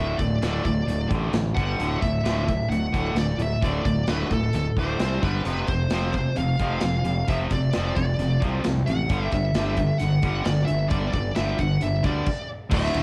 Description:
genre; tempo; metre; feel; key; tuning
hard rock; 132 BPM; 4/4; straight; unclear; A4 = 441 Hz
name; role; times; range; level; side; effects
high-gain lead guitar; melody; 0.0-13.0 s; A4 to F#5; -32 LUFS; equal; distortion, cassette tape
overdriven electric guitar; riff; 0.0-13.0 s; D2 to C4; -30 LUFS; equal; cassette tape
tight distorted guitar; riff; 0.0-13.0 s; D2 to C4; -32 LUFS; equal; distortion, cassette tape
fuzz fingered electric bass; bass; 0.0-13.0 s; D1 to D2; -30 LUFS; equal; overdrive
big rock drum kit; drums; 0.2-13.0 s; crash cymbal, hi-hat, kick drum, ride cymbal, snare drum; -31 LUFS; equal; cassette tape
high-gain distorted guitar; riff; 12.7-13.0 s; D2 to D3; -35 LUFS; equal; distortion, cassette tape
room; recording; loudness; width
studio ambience; home recording on cassette; -24 LUFS; mono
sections
0.0-12.7 A section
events
stop 12.3-12.7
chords
0.0 D5; 1.6 G5; 1.8 D; 5.0 C5; 5.2 G5; 5.5 F5; 9.1 G5

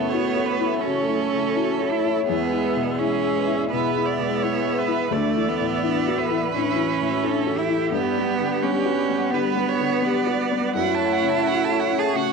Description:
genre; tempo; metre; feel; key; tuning
neoclassical piano and strings; 85 BPM; 4/4; rubato; F# minor; A4 = 442 Hz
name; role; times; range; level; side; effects
rich cello; second line; 0.0-12.3 s; A3 to G#4; -24 LUFS; right 8 dB; none
dark upright piano; accompaniment; 0.0-12.3 s; D2 to G#4; -28 LUFS; left 13 dB; none
rich viola; accompaniment; 0.0-12.3 s; G4 to A5; -28 LUFS; right 11 dB; none
lush unison pad; sustained chords; 0.0-12.3 s; E3 to F#5; -28 LUFS; left 2 dB; chorus
vibraphone with soft mallets; arpeggios; 0.0-12.3 s; D4 to F#5; -28 LUFS; left 12 dB; slapback echo
room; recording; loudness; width
moderate spring reverb, RT60 1.3 s, studio reverb; 1960s-style stereo with parts hard left and right; -20 LUFS; side -4 dB against mid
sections
0.0-12.3 A section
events
none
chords
0.0 F#m7; 2.3 E7; 5.1 Dadd9; 7.9 Gmaj7; 10.8 F#m7

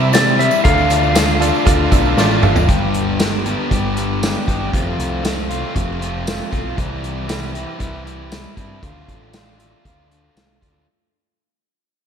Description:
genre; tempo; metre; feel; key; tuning
classic rock; 117 BPM; 4/4; straight; unclear; A4 = 439 Hz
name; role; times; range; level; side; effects
clean lap steel guitar; melody; 0.0-2.1 s; D5 to F5; -19 LUFS; left 2 dB; none
tack piano; accompaniment; 0.0-2.6 s; E4 to A5; -24 LUFS; right 6 dB; slapback echo
overdriven electric guitar; riff; 0.0-10.9 s; F2 to G4; -20 LUFS; left 1 dB; slapback echo
growling picked electric bass; bass; 0.0-10.9 s; F1 to C3; -22 LUFS; equal; overdrive
vintage drum kit; drums; 0.1-10.7 s; hi-hat, kick drum, snare drum, tambourine, toms; -19 LUFS; equal; none
tambourine; percussion; 0.1-2.7 s; none; -34 LUFS; left 14 dB; none
room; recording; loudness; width
moderate lush hall reverb, RT60 1.9 s; big arena sound; -15 LUFS; side -7 dB against mid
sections
0.0-2.7 A section; 2.7-10.9 B section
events
honky-tonk piano fill 1.7-2.7; drum fill 2.2-2.7; fade-out 2.7-10.9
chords
0.0 C; 0.6 Dm; 2.7 G; 4.7 F; 6.8 C; 8.8 Dm

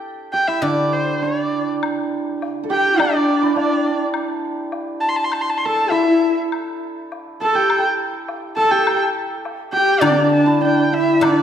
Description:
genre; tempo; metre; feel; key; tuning
chinese traditional, Chinese chamber ensemble; 102 BPM; 2/4; rubato; D shang mode; A4 = 440 Hz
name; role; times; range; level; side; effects
hammered dulcimer; second line; 0.0-11.4 s; D4 to A4; -23 LUFS; right 3 dB; none
warm erhu; melody; 0.3-11.4 s; C5 to C6; -20 LUFS; equal; none
guzheng; accompaniment; 0.6-2.4, 10.0-11.4 s; D3; -23 LUFS; left 3 dB; none
woodblock; percussion; 1.8-11.4 s; none; -28 LUFS; left 5 dB; none
breathy mellow low xiao; second line; 2.6-11.4 s; C4 to A4; -21 LUFS; left 3 dB; none
rich horsehead fiddle; second line; 2.7-11.4 s; D4 to A4; -23 LUFS; right 3 dB; none
room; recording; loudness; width
wet scoring stage reverb, RT60 1.9 s; minimal, uncompressed stereo recording; -16 LUFS; side -9 dB against mid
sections
0.0-1.8 A section; 1.8-11.2 B section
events
none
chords
none

